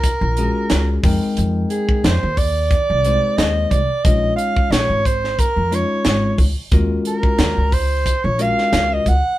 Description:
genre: electric jazz fusion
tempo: 90 BPM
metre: 4/4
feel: swing 54% on 16ths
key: Eb dorian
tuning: A4 = 440 Hz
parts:
  - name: warm soprano saxophone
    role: melody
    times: 0.0-9.4 s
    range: Ab4 to Gb5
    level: -20 LUFS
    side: right 2 dB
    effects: none
  - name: upright bass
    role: bass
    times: 0.0-9.2 s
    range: Ab1 to F2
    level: -20 LUFS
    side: equal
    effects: none
  - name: tight funk drum kit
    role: drums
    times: 0.0-9.2 s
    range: hi-hat, kick drum, snare drum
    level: -19 LUFS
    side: equal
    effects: none
  - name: bell-like tine electric piano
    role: accompaniment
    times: 0.4-9.1 s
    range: Ab3 to G5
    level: -23 LUFS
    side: left 3 dB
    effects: none
room: light reverb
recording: band playing live in one room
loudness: -15 LUFS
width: side -15 dB against mid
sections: 0.0-9.4 A section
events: none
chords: 0.0 Ebm11 (rootless); 1.0 Fm11; 4.0 Bbm7; 6.7 Ebm11

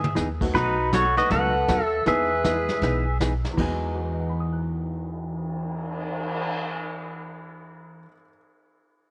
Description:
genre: country, western swing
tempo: 158 BPM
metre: 4/4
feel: swing 64% on 8ths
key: E major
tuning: A4 = 440 Hz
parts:
  - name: pedal steel guitar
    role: melody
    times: 0.0-3.2 s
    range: D#4 to F#5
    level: -26 LUFS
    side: equal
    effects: none
  - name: clear clarinet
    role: second line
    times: 0.0-3.2 s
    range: F#4 to B4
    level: -30 LUFS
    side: equal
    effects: none
  - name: upright bass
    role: bass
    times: 0.0-8.0 s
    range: B1 to G#2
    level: -32 LUFS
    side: equal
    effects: none
  - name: vintage brush drum kit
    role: drums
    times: 0.0-6.5 s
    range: brushed snare drum, crash cymbal, cymbal swell, hi-hat, kick drum, snare drum, toms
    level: -34 LUFS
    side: equal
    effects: none
  - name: hollow-body jazz guitar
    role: accompaniment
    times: 0.2-8.1 s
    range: B2 to G#4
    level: -32 LUFS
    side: equal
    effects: none
  - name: warm upright piano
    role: accompaniment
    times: 0.4-8.4 s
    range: E2 to F#6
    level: -37 LUFS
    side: equal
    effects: none
room: moderate echo chamber reverb, RT60 2.2 s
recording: none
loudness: -25 LUFS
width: mono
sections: 0.5-3.6 A section; 3.6-6.6 B section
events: drum fill 0.0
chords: 0.0 Emaj7; 0.5 B7; 2.1 Emaj7

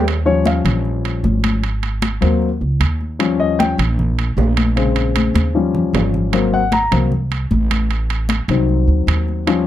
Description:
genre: Afro-Cuban jazz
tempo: 153 BPM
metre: 4/4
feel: straight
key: Eb mixolydian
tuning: A4 = 439 Hz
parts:
  - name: warm concert grand piano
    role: accompaniment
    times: 0.0-9.7 s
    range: Db3 to Bb5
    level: -18 LUFS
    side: left 4 dB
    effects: none
  - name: upright bass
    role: bass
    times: 0.0-9.7 s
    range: Ab1 to Eb2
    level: -18 LUFS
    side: right 1 dB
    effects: none
  - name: congas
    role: percussion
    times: 0.1-9.7 s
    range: none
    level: -22 LUFS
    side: left 1 dB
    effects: none
  - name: timbales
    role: percussion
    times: 0.1-9.7 s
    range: none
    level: -24 LUFS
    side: right 8 dB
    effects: none
room: light reverb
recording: dark, warm production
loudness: -15 LUFS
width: side -12 dB against mid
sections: 0.1-9.7 A section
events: grand piano solo 0.1-9.7; drum fill 5.2-6.3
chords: 0.1 Eb9; 1.6 Ab9; 3.2 Eb9; 4.8 Bbm7; 5.6 Eb9; 6.3 Ab9; 7.9 Adim7

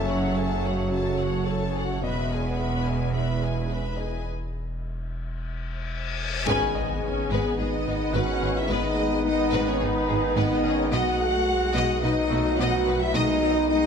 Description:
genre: cinematic, hybrid orchestral and electronic film score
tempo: 108 BPM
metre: 4/4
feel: straight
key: G# phrygian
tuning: A4 = 440 Hz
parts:
  - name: rich chamber violin section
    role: melody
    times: 0.0-13.4 s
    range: D#4 to B5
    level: -34 LUFS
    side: left 4 dB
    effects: none
  - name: warm symphonic violin section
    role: second line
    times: 0.0-13.9 s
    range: A4 to G#5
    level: -31 LUFS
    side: left 2 dB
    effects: none
  - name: warm symphonic viola section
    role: accompaniment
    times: 0.0-13.9 s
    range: F#3 to C#5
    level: -33 LUFS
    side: equal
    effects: none
  - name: analog drone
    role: sustained chords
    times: 0.0-13.9 s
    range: D#3 to C#5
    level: -34 LUFS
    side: equal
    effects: chorus
  - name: clear trombone section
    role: sustained chords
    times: 0.0-13.9 s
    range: B2 to B3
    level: -34 LUFS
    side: right 3 dB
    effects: none
  - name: mellow French horn section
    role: sustained chords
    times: 0.0-13.9 s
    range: B3 to A4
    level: -27 LUFS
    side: left 2 dB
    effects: none
  - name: clear symphonic cello section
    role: bass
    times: 0.0-13.2 s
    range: E2 to B2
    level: -32 LUFS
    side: right 3 dB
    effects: none
  - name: clear symphonic double bass section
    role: bass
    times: 0.0-13.2 s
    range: E1 to B1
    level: -31 LUFS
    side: right 4 dB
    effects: none
  - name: saturated sub bass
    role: bass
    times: 0.0-13.9 s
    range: E1 to B1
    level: -32 LUFS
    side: equal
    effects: none
  - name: bright concert grand piano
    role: texture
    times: 0.0-13.9 s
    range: A3 to F#5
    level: -40 LUFS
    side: left 2 dB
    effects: none
  - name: reverse cymbal and impact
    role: sound effects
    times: 5.5-8.7 s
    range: none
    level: -34 LUFS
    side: left 4 dB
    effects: none
room: moderate scoring stage reverb, RT60 2.0 s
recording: none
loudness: -22 LUFS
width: side -6 dB against mid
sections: 0.0-6.5 A section; 6.5-13.9 B section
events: break 4.3-6.5; reverse cymbal 5.5-6.5; band accent 6.5-7.0; impact 6.5-8.7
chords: 0.0 F#m; 2.0 E; 6.5 G#m; 10.9 B

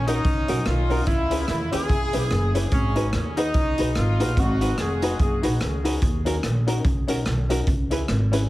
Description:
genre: ska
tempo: 146 BPM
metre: 4/4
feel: swing 59% on 8ths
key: unclear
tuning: A4 = 440 Hz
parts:
  - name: clear horn section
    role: melody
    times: 0.0-5.4 s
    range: C#4 to G#4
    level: -27 LUFS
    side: left 1 dB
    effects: tape echo
  - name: upright bass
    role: bass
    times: 0.0-8.5 s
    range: E#1 to E2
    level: -24 LUFS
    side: equal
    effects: none
  - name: hollow-body jazz guitar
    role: accompaniment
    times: 0.1-8.4 s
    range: C#4 to B4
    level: -30 LUFS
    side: right 4 dB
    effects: none
  - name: dark upright piano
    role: stabs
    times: 0.1-8.5 s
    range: C#4 to B4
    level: -30 LUFS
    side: left 4 dB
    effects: tape echo
  - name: raw garage drum kit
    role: drums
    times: 0.1-8.4 s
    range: hi-hat, kick drum, rim click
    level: -25 LUFS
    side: equal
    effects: none
room: light reverb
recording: heavily compressed radio sound, multiband compression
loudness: -20 LUFS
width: side -17 dB against mid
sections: 0.0-8.5 A section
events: none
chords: 0.0 D#m7; 1.1 C#m7; 2.7 G#m7; 6.0 D#m7; 7.7 C#m7

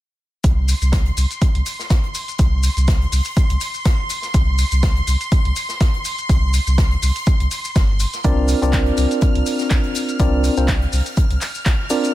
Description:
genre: deep house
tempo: 123 BPM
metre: 4/4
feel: swing 55% on 16ths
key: unclear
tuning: A4 = 440 Hz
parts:
  - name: sub bass with octave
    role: bass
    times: 0.4-11.7 s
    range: G1 to C2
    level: -18 LUFS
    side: equal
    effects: sidechain pumping
  - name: electronic kick drum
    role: drums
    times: 0.4-11.8 s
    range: none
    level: -16 LUFS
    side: equal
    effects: overdrive
  - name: open jazz drum kit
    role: drums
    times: 0.4-12.1 s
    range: hi-hat, snare drum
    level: -34 LUFS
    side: left 2 dB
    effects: high-pass filter on hats, high-pass filter on snare, high-pass filter on room
  - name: punchy analog drum machine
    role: drums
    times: 0.4-12.1 s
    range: handclaps, hi-hat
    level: -29 LUFS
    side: right 3 dB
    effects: none
  - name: maracas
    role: percussion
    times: 0.4-12.1 s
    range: none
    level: -29 LUFS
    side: left 6 dB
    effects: none
  - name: string machine, violins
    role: texture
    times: 0.4-12.1 s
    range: C6 to F6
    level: -28 LUFS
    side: equal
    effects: ensemble chorus
  - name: tine electric piano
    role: stabs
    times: 8.2-12.1 s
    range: C4 to D5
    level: -20 LUFS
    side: equal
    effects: medium stereo tremolo, tape echo
room: small room ambience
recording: none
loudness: -16 LUFS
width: side -15 dB against mid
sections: 0.4-12.1 A section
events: none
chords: 0.4 C5; 8.2 Bbadd9

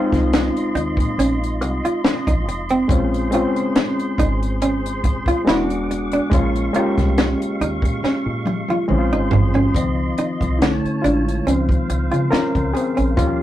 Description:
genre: R&B, neo-soul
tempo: 70 BPM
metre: 4/4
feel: swing 53% on 16ths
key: unclear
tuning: A4 = 435 Hz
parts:
  - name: hollow-body jazz guitar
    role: second line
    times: 0.0-13.1 s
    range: C4 to F4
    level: -20 LUFS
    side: right 1 dB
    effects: none
  - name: overdriven reed electric piano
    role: accompaniment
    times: 0.0-13.4 s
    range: D3 to Bb4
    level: -22 LUFS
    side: left 1 dB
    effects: none
  - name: tonewheel organ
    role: sustained chords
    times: 0.0-13.4 s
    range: Ab3 to D6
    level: -29 LUFS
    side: right 1 dB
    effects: chorus vibrato, slow rotary speaker
  - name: deep dub fingered electric bass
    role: bass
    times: 0.1-13.4 s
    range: E1 to Db3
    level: -23 LUFS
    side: equal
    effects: none
  - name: compact cocktail drum kit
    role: drums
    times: 0.1-13.4 s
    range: hi-hat, kick drum, snare drum, toms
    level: -20 LUFS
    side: equal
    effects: none
room: moderate booth ambience, RT60 0.3 s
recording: rough rehearsal-room recording, tube saturation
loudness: -17 LUFS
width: side -13 dB against mid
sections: 0.0-9.7 A section; 9.7-13.4 B section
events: drum fill 8.0-9.7; reed electric piano solo 9.7-13.4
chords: 0.0 Dbmaj9 (rootless); 2.9 Bbm9; 5.5 E9; 6.3 Eb9sus4/Bb (rootless); 8.9 Bbm9; 9.7 Dbmaj9; 10.6 Bm9; 11.5 Dbmaj7

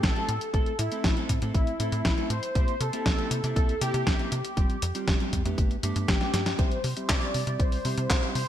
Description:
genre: italo disco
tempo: 119 BPM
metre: 4/4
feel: straight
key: unclear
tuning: A4 = 438 Hz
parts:
  - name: wide unison lead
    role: melody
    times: 0.0-8.5 s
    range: E4 to D5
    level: -32 LUFS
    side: left 1 dB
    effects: lush chorus, cassette tape, ping-pong delay
  - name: mellow electric guitar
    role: stabs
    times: 0.0-8.4 s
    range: G3 to A4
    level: -34 LUFS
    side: right 1 dB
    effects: lush chorus, low-pass filter, ping-pong delay
  - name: tight sequencer bass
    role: bass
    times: 0.0-8.5 s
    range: F1 to C3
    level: -30 LUFS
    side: equal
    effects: tube saturation
  - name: clean 12-bit digital drum machine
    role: drums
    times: 0.0-8.5 s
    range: handclaps, hi-hat, snare drum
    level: -30 LUFS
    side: left 1 dB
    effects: high-pass filter on snare, high-pass filter on hats, high-pass filter on room, gated reverb
  - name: electronic kick drum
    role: drums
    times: 0.0-8.2 s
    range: none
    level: -26 LUFS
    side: equal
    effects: none
room: light reverb, digital ambience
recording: bright 1980s-style digital production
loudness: -24 LUFS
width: side -11 dB against mid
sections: 0.0-6.6 A section; 6.6-8.5 B section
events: drum fill 6.2-6.6; band accent 6.5; filter sweep on clean electric guitar 6.6-8.5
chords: 0.0 Am; 2.6 C7; 4.6 Fsus2; 5.6 Gadd9; 6.6 C

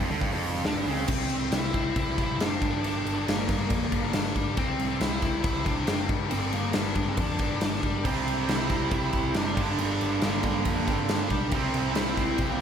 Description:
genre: hard rock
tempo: 138 BPM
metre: 4/4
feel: straight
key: unclear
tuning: A4 = 441 Hz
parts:
  - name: overdriven tonewheel organ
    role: sustained chords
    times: 0.0-12.6 s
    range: G3 to G5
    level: -41 LUFS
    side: equal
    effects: none
  - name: distorted electric guitar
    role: riff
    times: 0.0-1.1, 8.0-12.6 s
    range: F2 to C4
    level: -31 LUFS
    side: right 10 dB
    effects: overdrive, slapback echo
  - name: scooped high-gain guitar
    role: riff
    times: 0.0-12.6 s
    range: F2 to C4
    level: -33 LUFS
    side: left 11 dB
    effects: distortion
  - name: hollow-body short-scale picked electric bass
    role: bass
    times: 0.0-12.6 s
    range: F1 to G2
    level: -33 LUFS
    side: equal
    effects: none
  - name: big rock drum kit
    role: drums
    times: 0.0-12.5 s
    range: crash cymbal, hi-hat, kick drum, snare drum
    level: -28 LUFS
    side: equal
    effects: none
  - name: high-gain lead guitar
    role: melody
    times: 0.7-12.6 s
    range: Bb3 to E4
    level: -31 LUFS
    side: right 1 dB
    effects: distortion, tape echo
room: moderate recital hall reverb, RT60 1.8 s, small room ambience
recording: big arena sound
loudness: -24 LUFS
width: side -8 dB against mid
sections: 0.0-1.1 A section; 1.1-12.6 B section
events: none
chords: 0.0 G5; 1.1 C; 2.6 Gm; 4.6 C; 6.1 Gm; 8.0 C; 9.6 Gm; 11.5 C

